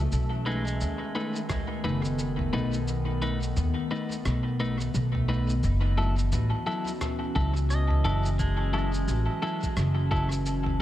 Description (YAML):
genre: ambient dub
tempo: 87 BPM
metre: 4/4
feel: swing 60% on 16ths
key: F# dorian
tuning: A4 = 439 Hz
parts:
  - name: warbly tape-like pad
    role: sustained chords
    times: 0.0-10.8 s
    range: D#3 to A5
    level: -33 LUFS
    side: left 1 dB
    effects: chorus, built-in reverb
  - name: pedal steel guitar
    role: arpeggios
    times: 0.0-2.9, 7.7-10.8 s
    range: G#3 to D#5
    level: -38 LUFS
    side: right 1 dB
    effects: tape echo
  - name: upright bass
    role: bass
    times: 0.0-10.8 s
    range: F#1 to D#2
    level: -26 LUFS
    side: equal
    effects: none
  - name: bubbling stepped-filter texture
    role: texture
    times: 0.0-5.6 s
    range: A3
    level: -42 LUFS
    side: right 1 dB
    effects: chorus, built-in reverb
  - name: lo-fi sampler-style drum kit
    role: drums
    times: 0.1-10.8 s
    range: cabasa, rim click, toms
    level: -37 LUFS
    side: equal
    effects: small room ambience, dub echo
  - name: semi-hollow electric guitar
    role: stabs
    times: 0.5-10.3 s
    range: F#3 to B4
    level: -33 LUFS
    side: left 2 dB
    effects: dub echo
  - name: electronic kick drum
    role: drums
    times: 1.5-10.3 s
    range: none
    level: -30 LUFS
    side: equal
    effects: small room ambience
room: digital ambience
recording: echo-heavy mix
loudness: -25 LUFS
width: side -13 dB against mid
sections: 0.0-5.6 A section; 5.6-10.8 B section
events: kick drops out 4.3-5.6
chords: 0.1 B7; 5.6 F#m7